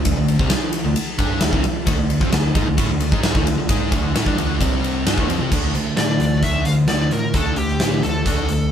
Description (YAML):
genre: hard rock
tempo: 132 BPM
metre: 4/4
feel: straight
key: unclear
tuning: A4 = 440 Hz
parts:
  - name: cranked stack guitar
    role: riff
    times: 0.0-8.7 s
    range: C3 to G#4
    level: -25 LUFS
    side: left 6 dB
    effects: overdrive
  - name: sludgy distorted guitar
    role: riff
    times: 0.0-8.7 s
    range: C3 to G#4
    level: -24 LUFS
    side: right 4 dB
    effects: overdrive
  - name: overdriven picked electric bass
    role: bass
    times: 0.0-8.7 s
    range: C2 to C3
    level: -24 LUFS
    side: left 1 dB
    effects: none
  - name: huge arena drum kit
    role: drums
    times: 0.1-8.6 s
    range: crash cymbal, hi-hat, kick drum, ride cymbal, snare drum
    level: -20 LUFS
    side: equal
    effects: none
  - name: high-gain lead guitar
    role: melody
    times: 6.0-8.7 s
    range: G4 to F5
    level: -24 LUFS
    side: left 1 dB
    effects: distortion
room: light reverb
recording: band playing live in one room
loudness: -16 LUFS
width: side -9 dB against mid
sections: 0.0-5.5 A section; 5.5-8.7 B section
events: none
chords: 0.0 D5; 4.6 C5; 5.1 Dm; 5.5 D5